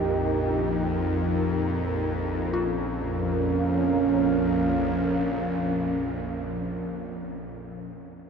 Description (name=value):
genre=ambient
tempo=free time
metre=none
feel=none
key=Bb dorian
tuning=A4 = 440 Hz
part: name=mellow horn-like synth lead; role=melody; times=0.0-6.8 s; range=Db4 to G4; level=-29 LUFS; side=right 6 dB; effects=phaser, wide subtle chorus, ping-pong delay
part: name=dark analog pad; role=sustained chords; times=0.0-7.1 s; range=Db4 to G5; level=-31 LUFS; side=equal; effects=chorus
part: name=bowed-like drone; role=drone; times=0.0-6.8 s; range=Bb1 to F2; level=-28 LUFS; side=left 1 dB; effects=built-in reverb
part: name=wind-like tuned noise texture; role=texture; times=0.0-2.5 s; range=Bb4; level=-40 LUFS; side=right 3 dB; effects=built-in reverb
part: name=dark detuned synth bell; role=arpeggios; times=2.5-8.3 s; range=F4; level=-37 LUFS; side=left 3 dB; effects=chorus, ping-pong delay
room=wet huge ambient reverb, RT60 7.8 s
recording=dark, warm production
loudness=-24 LUFS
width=side -6 dB against mid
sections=0.0-2.5 A section; 2.5-6.7 B section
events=none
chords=0.0 Bb5; 2.5 Bbm